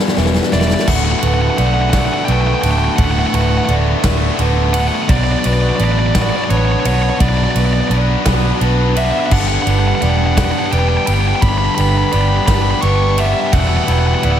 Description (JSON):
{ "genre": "post-rock", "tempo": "57 BPM (dotted quarters)", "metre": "6/8", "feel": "straight", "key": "D major", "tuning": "A4 = 439 Hz", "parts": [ { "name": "twelve-string electric guitar", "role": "arpeggios", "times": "0.0-0.9 s", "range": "E2 to E4", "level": "-28 LUFS", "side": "equal", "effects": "none" }, { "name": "vibraphone with soft mallets", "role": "arpeggios", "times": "0.0-14.4 s", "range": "B4 to A5", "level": "-24 LUFS", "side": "right 6 dB", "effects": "analog delay" }, { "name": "distorted electric guitar", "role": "riff", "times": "0.0-14.4 s", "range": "D2 to B4", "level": "-20 LUFS", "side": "left 11 dB", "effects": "overdrive" }, { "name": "huge arena drum kit", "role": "drums", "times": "0.1-14.4 s", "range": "crash cymbal, kick drum, ride cymbal, snare drum", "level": "-20 LUFS", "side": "equal", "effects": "none" }, { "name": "vintage muted fingered electric bass", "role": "bass", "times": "0.2-14.4 s", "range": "D1 to B1", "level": "-16 LUFS", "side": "equal", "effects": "none" }, { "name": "nasal lead guitar with a parked wah", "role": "melody", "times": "0.5-14.4 s", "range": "C#5 to C#6", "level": "-20 LUFS", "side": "right 1 dB", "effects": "overdrive, analog delay" }, { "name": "cranked stack guitar", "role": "riff", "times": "0.9-14.4 s", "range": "D2 to B4", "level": "-22 LUFS", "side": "right 12 dB", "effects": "overdrive" } ], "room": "light reverb, studio reverb", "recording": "none", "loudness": "-12 LUFS", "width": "side -10 dB against mid", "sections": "0.9-14.4 A section", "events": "drum fill 0.0-0.9", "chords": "0.0 Em7; 0.9 D6; 5.1 Bm7; 9.3 Gmaj7; 13.5 Em7" }